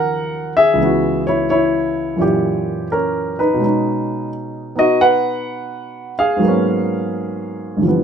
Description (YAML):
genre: solo jazz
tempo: 85 BPM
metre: 4/4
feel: swing 67% on 8ths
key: unclear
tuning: A4 = 440 Hz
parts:
  - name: warm grand piano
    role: solo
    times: 0.0-8.0 s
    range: Db2 to Gb5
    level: -15 LUFS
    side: equal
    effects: none
room: moderate small room reverb, RT60 0.5 s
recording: none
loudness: -15 LUFS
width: side -7 dB against mid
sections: 0.0-8.0 A section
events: none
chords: 0.0 Ebm9; 0.8 Dbm7; 2.2 Gb7b9; 3.6 B69; 6.4 Abm11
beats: 0.08 | 0.78 1.49 2.19 2.90 | 3.60 4.30 5.01 5.71 | 6.42 7.12 7.82